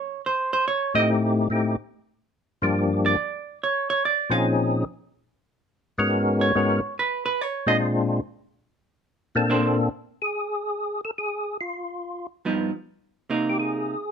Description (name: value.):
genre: jazz.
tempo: 143 BPM.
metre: 4/4.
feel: swing 66% on 8ths.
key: unclear.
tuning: A4 = 440 Hz.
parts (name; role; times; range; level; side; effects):
vintage hollow-body jazz guitar; accompaniment; 0.0-9.8, 12.5-13.9 s; G2 to F5; -23 LUFS; right 4 dB; none.
percussive tonewheel organ; melody; 0.9-14.1 s; G2 to Bb4; -22 LUFS; left 2 dB; slow rotary speaker, chorus vibrato.
room: light reverb.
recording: close, detailed microphones.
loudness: -22 LUFS.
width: side -7 dB against mid.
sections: 0.0-9.5 A section; 9.5-14.1 B section.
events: hollow-body jazz guitar solo 0.0-9.5.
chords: 0.0 Dbmaj7(no3); 1.1 Am7b5; 1.9 Gm7; 4.5 Bbm11; 5.3 Abm11; 7.8 Bb9; 9.5 Bbmaj9; 11.2 N.C.; 12.0 G7b13; 12.9 Cm7.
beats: 0.25 0.67 | 1.09 1.51 1.93 2.35 | 2.77 3.19 3.61 4.03 | 4.45 4.87 5.29 5.71 | 6.13 6.55 6.97 7.39 | 7.81 8.23 8.65 9.07 | 9.50 9.92 10.34 10.76 | 11.18 11.60 12.03 12.45 | 12.87 13.29 13.71.